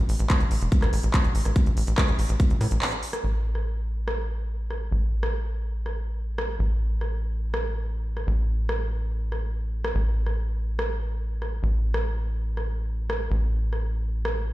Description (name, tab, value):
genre	psychedelic trance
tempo	143 BPM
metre	4/4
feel	straight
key	unclear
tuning	A4 = 440 Hz
part	tight sequencer bass	bass	0.0-14.5 s	E1 to A2	-25 LUFS	equal	none
part	techno drum kit	drums	0.1-14.3 s	handclaps, hi-hat, rim click	-31 LUFS	right 1 dB	none
part	electronic kick drum	drums	0.3-2.5 s	none	-21 LUFS	equal	none
room	little or no reverb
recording	played on a big sound system in a bare room, large studio reverb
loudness	-24 LUFS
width	side -17 dB against mid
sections	0.0-3.2 A section; 3.2-14.5 B section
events	drop 0.0-3.2; break 2.8-3.2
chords	none